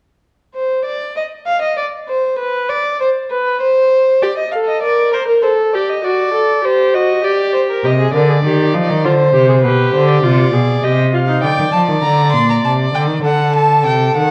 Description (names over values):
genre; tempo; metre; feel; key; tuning
classical, baroque-style fugue for string quartet; 99 BPM; 3/4; straight; unclear; A4 = 440 Hz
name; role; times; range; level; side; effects
dark violin; second line; 0.5-14.3 s; A4 to F5; -18 LUFS; equal; none
warm viola; accompaniment; 4.2-11.4 s; Eb4 to C5; -18 LUFS; equal; none
rich cello; bass; 7.8-14.3 s; Bb2 to F3; -17 LUFS; equal; none
warm violin; melody; 11.4-14.3 s; F#5 to C6; -18 LUFS; equal; none
room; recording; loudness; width
wet recital hall reverb, RT60 1.4 s; worn, warbling old tape, cassette tape, warbly pitch drift; -14 LUFS; mono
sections
0.5-14.3 A section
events
none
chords
0.5 N.C.; 4.2 Gm (rootless); 5.4 A7(b5, no3); 6.0 D7/F#; 7.2 Gm; 7.8 Cm; 9.0 D7(no3); 9.6 G7/B; 10.8 Cm; 11.4 Gm; 12.6 Adim/C (rootless)